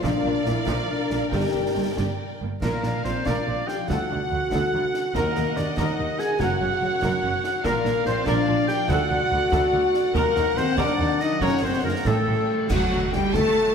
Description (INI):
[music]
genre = cinematic, heroic adventure film score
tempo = 95 BPM (dotted quarters)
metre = 6/8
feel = straight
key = unclear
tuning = A4 = 440 Hz
[part]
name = warm symphonic violin section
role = melody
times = 0.0-13.7 s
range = Bb4 to A5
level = -33 LUFS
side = left 3 dB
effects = none
[part]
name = rich symphonic violin section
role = second line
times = 0.0-13.7 s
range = Db5 to A5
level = -34 LUFS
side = equal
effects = none
[part]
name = warm symphonic viola section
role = accompaniment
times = 0.0-13.7 s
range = F3 to Bb4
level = -33 LUFS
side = right 2 dB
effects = none
[part]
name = mellow French horn section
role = sustained chords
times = 0.0-13.7 s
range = A3 to A4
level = -25 LUFS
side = left 2 dB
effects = none
[part]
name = concert harp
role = arpeggios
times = 0.0-13.7 s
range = Gb2 to Bb5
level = -35 LUFS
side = left 6 dB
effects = none
[part]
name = rich symphonic cello section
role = bass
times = 0.0-13.7 s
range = D2 to A3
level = -30 LUFS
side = right 3 dB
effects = none
[part]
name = rich symphonic double bass section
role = bass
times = 0.0-13.4 s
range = Gb1 to Eb2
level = -30 LUFS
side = right 4 dB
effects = none
[part]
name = concert snare drum, concert bass drum and clash cymbals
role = drums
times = 0.0-13.5 s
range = none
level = -32 LUFS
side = equal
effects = none
[part]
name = clear oboe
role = second line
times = 2.6-12.7 s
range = A4 to Ab5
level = -33 LUFS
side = right 2 dB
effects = none
[part]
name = mellow clarinet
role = second line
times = 2.6-12.7 s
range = A4 to Ab5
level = -32 LUFS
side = left 2 dB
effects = none
[part]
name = bright trumpet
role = stabs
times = 2.6-12.7 s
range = A4 to Ab5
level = -30 LUFS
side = right 2 dB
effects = none
[part]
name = cymbal swell, clash cymbals and concert bass drum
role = percussion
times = 10.2-13.5 s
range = none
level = -30 LUFS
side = equal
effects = none
[sound]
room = wet scoring stage reverb, RT60 1.5 s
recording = none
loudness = -21 LUFS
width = side -6 dB against mid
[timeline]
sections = 0.0-2.6 A section; 2.6-12.7 B section; 12.7-13.7 A section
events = band accent 12.7-13.1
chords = 0.0 Bb; 1.3 Gm; 2.6 Bb; 3.9 D; 5.1 Ebm; 6.4 Gb; 7.7 Bb; 8.9 D; 10.2 Ebm; 11.4 Gb; 12.1 A7; 12.7 D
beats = | 0.04 0.67 | 1.32 1.98 | 2.62 3.26 | 3.89 4.52 | 5.15 5.78 | 6.40 7.03 | 7.65 8.27 | 8.89 9.52 | 10.15 10.78 | 11.42 12.06 | 12.71 13.35